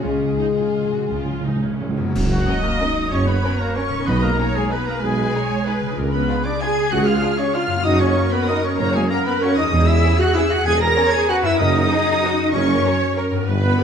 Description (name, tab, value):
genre	classical, orchestral ballroom waltz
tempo	158-206 BPM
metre	3/4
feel	rubato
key	F# major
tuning	A4 = 442 Hz
part	warm symphonic violin section	melody	0.0-13.8 s	G#4 to A#6	-28 LUFS	equal	none
part	warm chamber violin section	second line	0.0-13.8 s	A#3 to B4	-33 LUFS	left 2 dB	none
part	warm symphonic viola section	accompaniment	0.0-13.8 s	B3 to D#5	-26 LUFS	right 2 dB	none
part	mellow French horn section	sustained chords	0.0-13.8 s	F#3 to A#4	-24 LUFS	left 2 dB	none
part	concert harp	arpeggios	0.0-13.8 s	E2 to B4	-27 LUFS	left 7 dB	none
part	rich symphonic cello section	bass	0.0-13.8 s	C#3 to A#4	-25 LUFS	right 3 dB	none
part	warm symphonic double bass section	bass	0.0-13.7 s	B1 to G2	-24 LUFS	right 2 dB	none
part	cymbal swell, clash cymbals and concert bass drum	percussion	0.0-2.8 s	none	-28 LUFS	right 1 dB	none
part	timpani	percussion	0.0-4.5, 11.6-12.0 s	F#2 to C#3	-26 LUFS	right 1 dB	none
part	warm tuba	bass	2.2-13.7 s	E1 to C#2	-27 LUFS	right 4 dB	none
part	bright small flute group	second line	2.3-13.8 s	F#4 to A#5	-26 LUFS	left 4 dB	none
part	warm oboe	second line	2.3-13.8 s	F#4 to A#5	-28 LUFS	right 2 dB	none
room	wet recital hall reverb, RT60 1.5 s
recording	dark, warm production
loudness	-16 LUFS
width	side -7 dB against mid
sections	0.0-2.2 A section; 2.2-13.8 B section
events	timpani fill 0.0-2.2; band accent 2.2-2.5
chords	0.0 C#; 2.2 F#; 4.1 G#m/B; 6.0 C#7b9; 7.9 F#; 9.7 C#m/E; 11.6 F#7